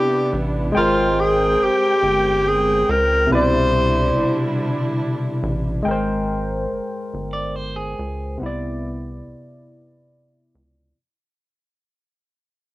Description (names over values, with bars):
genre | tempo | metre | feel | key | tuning
R&B | 47 BPM (dotted quarters) | 6/8 | straight | C major | A4 = 441 Hz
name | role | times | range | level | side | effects
breathy tenor saxophone | melody | 0.0-4.5 s | F4 to C5 | -18 LUFS | equal | cassette tape
barky tine electric piano | accompaniment | 0.0-11.0 s | B2 to G5 | -22 LUFS | equal | overdrive, lush chorus, cassette tape
warm studio string section | sustained chords | 0.0-5.8 s | C3 to G5 | -26 LUFS | right 1 dB | cassette tape
rubbery square bass | bass | 0.3-10.9 s | G1 to Db2 | -25 LUFS | equal | none
electric guitar at the edge of break-up | second line | 7.3-8.4 s | Ab4 to D5 | -29 LUFS | right 2 dB | cassette tape
room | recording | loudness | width
studio reverb | home recording on cassette | -17 LUFS | side -17 dB against mid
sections
0.0-5.8 A section; 5.8-11.0 B section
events
fade-out 5.8-11.0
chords
0.0 Cmaj9; 0.7 Abmaj9; 3.3 Cmaj9; 5.8 Abmaj9; 8.4 Cmaj9